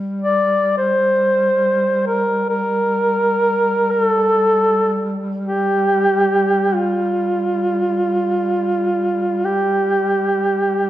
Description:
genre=caucasian folk, Caucasian lament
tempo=free time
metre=none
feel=none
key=G minor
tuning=A4 = 442 Hz
part: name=mellow duduk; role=drone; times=0.0-10.9 s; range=G3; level=-24 LUFS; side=equal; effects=none
part: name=mellow duduk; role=melody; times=0.2-10.9 s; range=F4 to D5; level=-16 LUFS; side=equal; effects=none
room=wet recital hall reverb, RT60 1.6 s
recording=recorded in a church or concert hall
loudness=-15 LUFS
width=side -13 dB against mid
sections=0.0-10.9 A section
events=none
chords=none

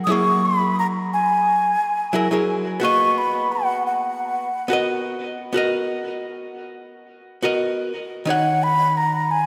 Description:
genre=chillout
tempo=88 BPM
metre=4/4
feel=straight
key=B major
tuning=A4 = 440 Hz
part: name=breathy mellow concert flute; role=melody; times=0.0-9.5 s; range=F#5 to D#6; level=-22 LUFS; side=equal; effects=tape echo
part: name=archtop guitar, miked and amplified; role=accompaniment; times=0.0-9.5 s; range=D#3 to F#5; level=-25 LUFS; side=equal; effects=diffuse ambient delay
room=wet lush hall reverb, RT60 3.0 s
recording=dreamy mix soaked in reverb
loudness=-21 LUFS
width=mono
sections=0.0-9.5 A section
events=none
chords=0.0 F#9; 2.8 Bmaj7; 7.9 D#m7

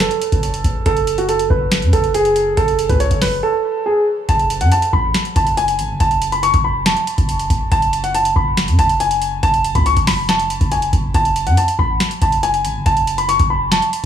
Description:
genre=hip hop, trap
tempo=140 BPM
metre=4/4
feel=half-time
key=F# minor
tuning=A4 = 441 Hz
part: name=warm baby grand piano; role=melody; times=0.0-14.1 s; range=F#4 to C#6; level=-16 LUFS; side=equal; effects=low-pass filter, digital delay
part: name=long sustained 808-style bass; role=bass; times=0.0-13.8 s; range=E1 to F#2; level=-20 LUFS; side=equal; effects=none
part: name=booming analog drum machine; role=drums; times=0.0-14.0 s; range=hi-hat, kick drum, snare drum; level=-20 LUFS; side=equal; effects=none
room=little or no reverb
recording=small room ambience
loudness=-14 LUFS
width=side -9 dB against mid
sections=0.0-4.3 A section; 4.3-14.1 B section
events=none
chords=0.0 F#m

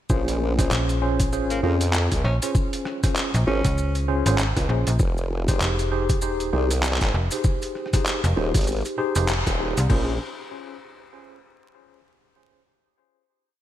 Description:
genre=glitch hop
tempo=98 BPM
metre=4/4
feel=swing 59% on 16ths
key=Bb dorian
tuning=A4 = 437 Hz
part: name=tine electric piano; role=stabs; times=0.1-10.1 s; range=Db4 to C5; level=-27 LUFS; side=equal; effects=medium stereo tremolo, vintage 12-bit sampler grit, sidechain pumping, ping-pong delay
part: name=formant-sweep wobble bass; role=bass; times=0.1-10.2 s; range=Eb1 to F2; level=-24 LUFS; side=equal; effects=chorus, tube saturation
part: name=electronic kick drum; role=drums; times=0.1-10.0 s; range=none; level=-23 LUFS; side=equal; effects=overdrive, studio reverb
part: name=maracas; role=percussion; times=0.1-9.9 s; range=none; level=-36 LUFS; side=left 2 dB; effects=none
part: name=boom bap sampler-style drum kit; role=drums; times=0.3-10.0 s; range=crash cymbal, handclaps, hi-hat, rim click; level=-29 LUFS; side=equal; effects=overdrive, studio reverb, gated reverb
part: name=slap-like FM bass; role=bass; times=0.7-9.9 s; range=F1 to Db2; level=-23 LUFS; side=equal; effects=none
part: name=raspy tenor saxophone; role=melody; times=1.5-4.0 s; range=Bb3 to Db4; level=-33 LUFS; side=right 2 dB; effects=ping-pong delay
room=light reverb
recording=bright 1980s-style digital production, vinyl crackle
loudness=-20 LUFS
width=side -12 dB against mid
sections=0.1-9.9 drop; 9.9-12.3 final chord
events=drop 0.1-9.9; band accent 9.3-9.6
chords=0.1 Bbm9; 5.0 Fm9; 9.9 Bbm9

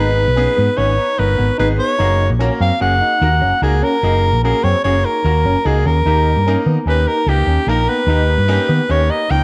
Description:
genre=progressive instrumental, progressive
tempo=148 BPM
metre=5/4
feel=straight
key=unclear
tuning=A4 = 439 Hz
part: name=breathy soprano saxophone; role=melody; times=0.0-9.4 s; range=G4 to G5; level=-19 LUFS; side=equal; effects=analog delay
part: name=bright grand piano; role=accompaniment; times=0.0-9.4 s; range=A#3 to B4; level=-26 LUFS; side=equal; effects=none
part: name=barky tine electric piano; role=arpeggios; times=0.0-9.3 s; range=B3 to D#4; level=-26 LUFS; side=equal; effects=phaser
part: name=hollow-body short-scale fingered electric bass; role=bass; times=0.0-9.4 s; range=F#1 to D#3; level=-18 LUFS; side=equal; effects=none
room=light reverb, studio reverb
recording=nothing above 11.0 kHz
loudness=-15 LUFS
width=mono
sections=0.0-9.4 A section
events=none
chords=0.0 G#m; 2.0 F#add9; 6.1 D#

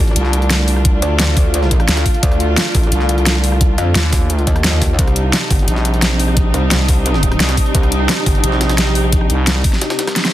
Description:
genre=dark technical drum and bass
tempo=174 BPM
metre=4/4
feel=straight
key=D phrygian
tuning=A4 = 440 Hz
part: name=warm studio string section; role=sustained chords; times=0.0-10.3 s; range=C3 to F4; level=-22 LUFS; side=equal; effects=sidechain pumping
part: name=metallic wobble bass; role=bass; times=0.0-8.4 s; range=G1 to F2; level=-16 LUFS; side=equal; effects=chorus, overdrive, sidechain pumping
part: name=deep dark ambient pad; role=texture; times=0.0-10.3 s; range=C4 to Eb6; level=-24 LUFS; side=right 1 dB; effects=chorus, built-in reverb, sidechain pumping
part: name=jungle sampler-style drum kit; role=drums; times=0.1-10.3 s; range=hi-hat, snare drum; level=-27 LUFS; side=equal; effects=none
part: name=growling FM bass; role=bass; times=0.2-9.6 s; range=Bb1 to Eb2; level=-16 LUFS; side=equal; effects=none
part: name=dubstep drum kit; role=drums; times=0.2-10.3 s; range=hi-hat, rim click, snare drum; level=-18 LUFS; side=equal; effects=overdrive
part: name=electronic kick drum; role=drums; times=0.8-9.7 s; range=none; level=-15 LUFS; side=equal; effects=overdrive
part: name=zap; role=sound effects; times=10.2-10.3 s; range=none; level=-40 LUFS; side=equal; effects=none
room=little or no reverb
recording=dense, heavily limited modern master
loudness=-12 LUFS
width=side -14 dB against mid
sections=0.0-10.3 A section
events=break 9.8-10.3; drum fill 10.2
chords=0.0 Dm; 5.0 Cm

